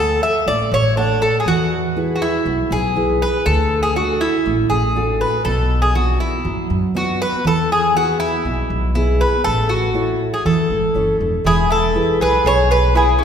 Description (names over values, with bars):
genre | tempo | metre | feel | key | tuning
greek folk, Greek bouzouki band | 120 BPM | 4/4 | straight | unclear | A4 = 441 Hz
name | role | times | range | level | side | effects
Greek bouzouki | melody | 0.0-13.2 s | D4 to E5 | -18 LUFS | equal | none
fingerpicked steel-string acoustic guitar | accompaniment | 0.0-13.2 s | B2 to F#5 | -21 LUFS | right 1 dB | none
upright bass | bass | 0.0-13.1 s | E1 to F#2 | -21 LUFS | equal | none
mandolin | second line | 11.5-13.2 s | C#4 to G#4 | -21 LUFS | right 1 dB | none
room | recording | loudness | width
wet concert hall reverb, RT60 2.1 s | recorded in a church or concert hall | -15 LUFS | side -8 dB against mid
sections
0.0-11.4 A section; 11.4-13.2 B section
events
none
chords
0.0 D; 1.5 E; 3.5 D; 5.5 Bm; 7.4 E; 9.4 A; 11.4 E